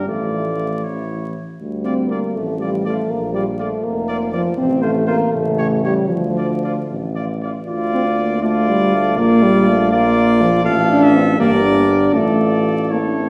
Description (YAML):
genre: classical, brass quintet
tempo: 80 BPM (dotted quarters)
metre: 6/8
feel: rubato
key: D minor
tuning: A4 = 437 Hz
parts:
  - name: bright trumpet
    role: melody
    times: 0.0-13.3 s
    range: C5 to F5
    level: -26 LUFS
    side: equal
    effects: none
  - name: warm flugelhorn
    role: second line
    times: 0.0-13.3 s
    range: E4 to Bb4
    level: -29 LUFS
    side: equal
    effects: none
  - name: mellow French horn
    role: accompaniment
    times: 0.0-13.3 s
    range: F3 to G4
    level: -23 LUFS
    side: equal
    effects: none
  - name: warm euphonium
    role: accompaniment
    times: 0.0-13.3 s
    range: C3 to D4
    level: -21 LUFS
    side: equal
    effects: none
  - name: clear tuba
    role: bass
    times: 0.0-13.3 s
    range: F1 to D2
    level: -24 LUFS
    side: equal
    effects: none
room: wet recital hall reverb, RT60 1.4 s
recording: heard from further back in the room, vinyl crackle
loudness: -17 LUFS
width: mono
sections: 0.0-7.7 A section; 7.7-13.3 A section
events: none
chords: 0.1 Dm/A; 1.6 Dm; 3.1 Bb; 4.6 F/A; 5.3 A7; 6.1 Dm; 9.2 Bb; 10.7 F/A; 11.4 Gm; 12.1 Dm/A